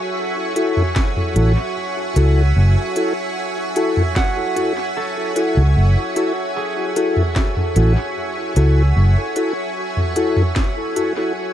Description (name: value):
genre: ambient dub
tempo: 75 BPM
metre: 4/4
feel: straight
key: F# minor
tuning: A4 = 441 Hz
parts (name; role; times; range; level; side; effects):
- soft additive organ-like pad; sustained chords; 0.0-11.5 s; F#4 to G#5; -24 LUFS; right 1 dB; ensemble chorus, built-in reverb
- concert harp; arpeggios; 0.0-8.8 s; F#4 to F#5; -29 LUFS; right 4 dB; vintage 12-bit sampler grit, dub echo
- mellow tonewheel organ; stabs; 0.6-11.3 s; E4 to A4; -22 LUFS; left 2 dB; slow rotary speaker, dub echo
- organic electronic drum kit; drums; 0.6-11.1 s; hi-hat, snare drum, toms; -22 LUFS; equal; dub echo
- electronic kick drum; drums; 1.0-10.7 s; none; -20 LUFS; equal; none
- vintage muted fingered electric bass; bass; 1.4-9.1 s; F#1 to C#2; -13 LUFS; equal; none
room: light reverb, digital ambience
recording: dark, warm production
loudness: -16 LUFS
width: side -11 dB against mid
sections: 0.0-11.5 A section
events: none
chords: 0.0 F#m7